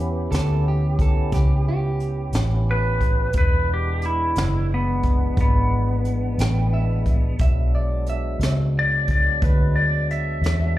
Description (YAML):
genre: slow blues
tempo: 59 BPM (dotted quarters)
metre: 12/8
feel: straight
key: E mixolydian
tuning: A4 = 440 Hz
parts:
  - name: electric guitar through a small old amp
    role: second line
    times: 0.0-8.6 s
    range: G4 to G5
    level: -31 LUFS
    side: right 3 dB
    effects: slapback echo
  - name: tonewheel organ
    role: sustained chords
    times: 0.0-10.8 s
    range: E3 to G4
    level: -32 LUFS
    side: right 1 dB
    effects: slow rotary speaker, overdrive, chorus vibrato
  - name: vintage muted fingered electric bass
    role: bass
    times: 0.0-10.8 s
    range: E1 to E2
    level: -21 LUFS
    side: equal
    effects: none
  - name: jazz brush drum kit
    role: drums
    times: 0.3-10.6 s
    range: hi-hat, kick drum, snare drum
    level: -22 LUFS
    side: equal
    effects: none
  - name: clean lap steel guitar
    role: melody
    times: 2.7-10.8 s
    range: B3 to E5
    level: -24 LUFS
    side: left 1 dB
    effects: slapback echo
room: little or no reverb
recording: live gig heard through the venue's PA, club reverb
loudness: -18 LUFS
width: side -15 dB against mid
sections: 0.0-10.8 A section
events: none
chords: 0.0 A7; 3.3 E7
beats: 0.31 1.32 2.33 | 3.35 4.36 5.37 6.38 | 7.40 8.41 9.42 10.44